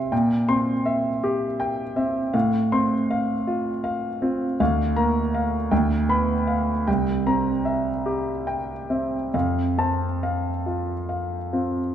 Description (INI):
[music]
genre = classical, romantic character piece for solo piano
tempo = 44-55 BPM (dotted quarters)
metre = 6/8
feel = rubato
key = F major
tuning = A4 = 444 Hz
[part]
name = warm concert grand piano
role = solo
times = 0.0-11.9 s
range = C2 to C6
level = -21 LUFS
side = equal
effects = none
[sound]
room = moderate recital hall reverb, RT60 1.6 s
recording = dark, warm production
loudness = -21 LUFS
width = side -10 dB against mid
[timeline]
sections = 0.0-11.9 A section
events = none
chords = 0.1 C7/Bb; 2.3 F/A; 4.6 Bb/D; 5.7 G7/D; 6.9 C7; 9.3 F